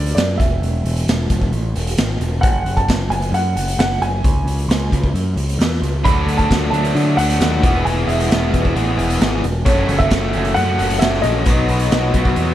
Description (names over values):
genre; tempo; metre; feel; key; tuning
indie rock; 133 BPM; 4/4; straight; unclear; A4 = 441 Hz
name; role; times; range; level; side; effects
dark upright piano; melody; 0.0-12.5 s; C#5 to B5; -22 LUFS; right 1 dB; slapback echo
growling picked electric bass; bass; 0.0-12.5 s; E1 to D3; -19 LUFS; equal; overdrive
raw garage drum kit; drums; 0.1-12.5 s; hi-hat, kick drum, snare drum; -19 LUFS; equal; none
biting overdriven guitar; riff; 6.0-12.5 s; E3 to A4; -22 LUFS; left 7 dB; none
raw garage guitar; riff; 6.0-12.5 s; F#2 to E4; -23 LUFS; right 5 dB; overdrive, wide subtle chorus, slapback echo
room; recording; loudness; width
little or no reverb; none; -15 LUFS; side -12 dB against mid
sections
0.0-12.5 A section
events
none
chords
0.4 N.C.; 2.4 F#sus2; 4.2 C#5; 6.1 D; 7.6 E; 9.7 F#m; 11.5 B